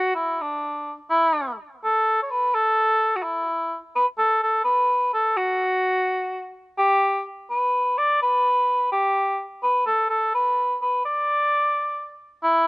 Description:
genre	andean folk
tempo	85 BPM (dotted quarters)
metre	6/8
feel	straight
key	B minor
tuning	A4 = 440 Hz
part	mellow cor anglais	solo	0.0-12.7 s	D4 to D5	-20 LUFS	equal	none
room	little or no reverb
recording	recorded outdoors, with no room sound, nothing above 10.6 kHz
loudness	-20 LUFS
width	side -24 dB against mid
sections	0.0-1.1 A section; 1.1-12.4 B section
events	none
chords	none

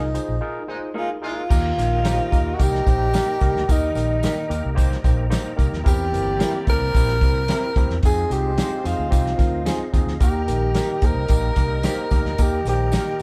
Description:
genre	uptempo 1960s-style soul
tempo	110 BPM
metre	4/4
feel	straight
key	Eb major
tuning	A4 = 440 Hz
part	breathy tenor saxophone	melody	0.0-13.2 s	Eb4 to Bb4	-27 LUFS	equal	none
part	barky tine electric piano	accompaniment	0.0-13.2 s	Bb2 to C5	-31 LUFS	equal	overdrive
part	fingered electric bass	bass	0.0-13.0 s	G1 to F2	-27 LUFS	equal	none
part	warm soul drum kit	drums	0.1-13.1 s	crash cymbal, hi-hat, kick drum, snare drum	-23 LUFS	equal	none
part	tambourine	percussion	0.2-13.2 s	none	-45 LUFS	equal	none
part	bright horn section	second line	0.7-13.2 s	Bb2 to D5	-37 LUFS	equal	none
part	electric guitar through a small old amp	stabs	0.9-13.1 s	Bb3 to C5	-36 LUFS	equal	none
part	percussive tonewheel organ	sustained chords	1.5-13.2 s	Bb4 to Bb5	-41 LUFS	equal	slow rotary speaker, chorus vibrato
room	moderate studio reverb, RT60 0.8 s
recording	band playing live in one room, faint mains hum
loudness	-21 LUFS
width	mono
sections	0.0-1.5 A section; 1.5-13.2 B section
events	break 0.4-1.5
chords	0.0 Bb7sus4; 1.5 Eb; 5.9 C7; 8.0 Fm7; 10.2 Eb

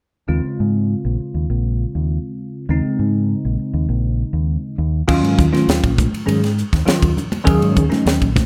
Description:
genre	electric jazz fusion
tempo	100 BPM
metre	4/4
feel	straight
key	Eb minor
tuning	A4 = 441 Hz
part	bell-like tine electric piano	accompaniment	0.3-8.4 s	Db3 to Ab4	-23 LUFS	equal	phaser
part	fingered electric bass	bass	0.3-8.4 s	Bb1 to Ab2	-21 LUFS	equal	none
part	crisp fusion drum kit	drums	5.1-8.5 s	crash cymbal, hi-hat, kick drum, ride cymbal, snare drum	-21 LUFS	equal	none
part	congas	percussion	5.4-8.5 s	none	-25 LUFS	equal	none
room	light reverb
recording	none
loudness	-18 LUFS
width	mono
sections	0.3-5.1 A section; 5.1-8.5 B section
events	none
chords	0.3 Eb13sus4; 4.8 N.C.; 5.1 Ebm9

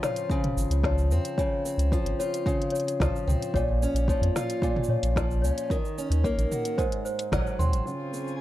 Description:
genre	folktronica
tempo	111 BPM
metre	4/4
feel	straight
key	Db major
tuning	A4 = 442 Hz
part	celesta	second line	0.0-7.9 s	C5 to C6	-32 LUFS	left 4 dB	ping-pong delay
part	picked old ladder-braced acoustic guitar	arpeggios	0.0-8.4 s	Ab2 to Gb4	-30 LUFS	right 1 dB	low-pass filter, digital delay
part	organic electronic drum kit	drums	0.0-8.4 s	cabasa, hi-hat, snare drum, toms	-33 LUFS	equal	overdrive
part	electronic kick drum	drums	0.3-7.4 s	none	-29 LUFS	equal	overdrive
part	warm sub bass	bass	0.6-7.8 s	Ab1 to Bb2	-25 LUFS	equal	none
part	muted string quartet	sustained chords	7.9-8.4 s	Db3 to F4	-35 LUFS	right 1 dB	none
part	twinkling granular texture	texture	8.1-8.4 s	Ab4 to Ab5	-46 LUFS	left 2 dB	built-in reverb
room	little or no reverb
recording	none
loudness	-24 LUFS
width	side -14 dB against mid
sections	0.0-7.9 A section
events	band accent 7.3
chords	0.0 Dbmaj7; 3.5 Bbm; 5.7 Ebm7; 6.8 Ab7; 7.9 Dbmaj7

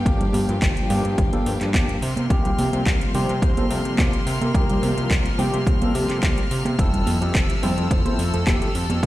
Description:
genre	nu-disco, nu disco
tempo	107 BPM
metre	4/4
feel	straight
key	unclear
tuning	A4 = 440 Hz
part	rich symphonic violin section	sustained chords	0.0-9.1 s	Bb3 to F6	-32 LUFS	left 2 dB	sidechain pumping
part	fat analog bass	bass	0.0-9.1 s	F1 to C3	-24 LUFS	equal	none
part	overdriven tine electric piano	accompaniment	0.1-9.1 s	F3 to C5	-26 LUFS	left 1 dB	fast tremolo, sidechain pumping, digital delay
part	electronic kick drum	drums	0.1-9.1 s	none	-22 LUFS	equal	overdrive
part	house drum kit	drums	0.1-9.1 s	handclaps, hi-hat	-30 LUFS	equal	overdrive
part	congas	percussion	0.2-9.0 s	none	-28 LUFS	right 2 dB	none
part	wide unison lead	melody	3.1-8.7 s	G4 to C5	-32 LUFS	right 1 dB	digital delay
room	light reverb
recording	played on a big sound system in a bare room, large studio reverb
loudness	-18 LUFS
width	side -15 dB against mid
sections	0.0-9.1 A section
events	none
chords	0.0 Gm7; 2.0 C7sus4; 6.8 Fmaj7

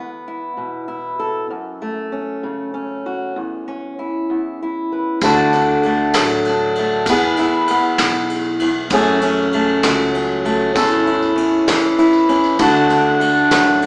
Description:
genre	acoustic folk duo or small band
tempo	65 BPM (dotted quarters)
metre	6/8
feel	straight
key	unclear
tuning	A4 = 439 Hz
part	fingerpicked steel-string acoustic guitar	accompaniment	0.0-13.9 s	E2 to B4	-15 LUFS	equal	none
part	upright bass	bass	5.2-13.9 s	A1 to F#2	-29 LUFS	equal	none
part	soft brush drum kit	drums	5.2-13.9 s	kick drum, ride cymbal, snare drum	-21 LUFS	equal	none
part	tambourine	percussion	5.2-13.7 s	none	-30 LUFS	right 1 dB	none
part	mellow clarinet	second line	12.6-13.9 s	D4	-15 LUFS	right 1 dB	none
room	moderate concert hall reverb, RT60 2.3 s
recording	recorded in a church or concert hall, small speaker sound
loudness	-14 LUFS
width	side -27 dB against mid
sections	0.0-5.2 A section; 5.2-13.9 B section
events	none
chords	0.0 E5; 1.5 F#m; 3.4 A/E; 5.2 D; 7.1 E; 8.9 F#madd9; 10.8 A/E; 12.6 D

